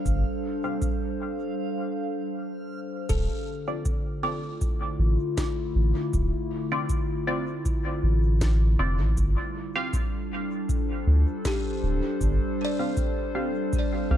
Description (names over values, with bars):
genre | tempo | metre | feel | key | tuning
ambient dub | 79 BPM | 4/4 | swing 54% on 16ths | D minor | A4 = 437 Hz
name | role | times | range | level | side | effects
warbly tape-like pad | sustained chords | 0.0-14.2 s | D3 to C5 | -30 LUFS | left 1 dB | chorus, built-in reverb
backwards swelling texture | texture | 0.0-1.6 s | F5 | -42 LUFS | right 8 dB | built-in reverb
soft dub sub bass | bass | 0.1-14.2 s | D1 to D2 | -22 LUFS | equal | none
electronic kick drum | drums | 0.1-13.9 s | none | -29 LUFS | equal | none
electronic shaker and snare drum | drums | 0.1-13.9 s | none | -38 LUFS | equal | overdrive, dub echo
filtered dub chord stab | stabs | 0.6-14.2 s | C4 to F5 | -33 LUFS | right 1 dB | phaser, wide subtle chorus, dub echo
buzzing kalimba | arpeggios | 3.1-5.6, 11.5-14.2 s | G4 to D5 | -36 LUFS | equal | tape echo
room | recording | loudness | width
light reverb, digital ambience | dark, warm production | -24 LUFS | side -11 dB against mid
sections
0.0-3.1 A section; 3.1-14.2 B section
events
break 1.6-3.1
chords
0.0 Dm7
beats
| 0.06 0.82 1.58 2.34 | 3.10 3.86 4.62 5.38 | 6.13 6.89 7.65 8.41 | 9.17 9.93 10.69 11.45 | 12.21 12.97 13.73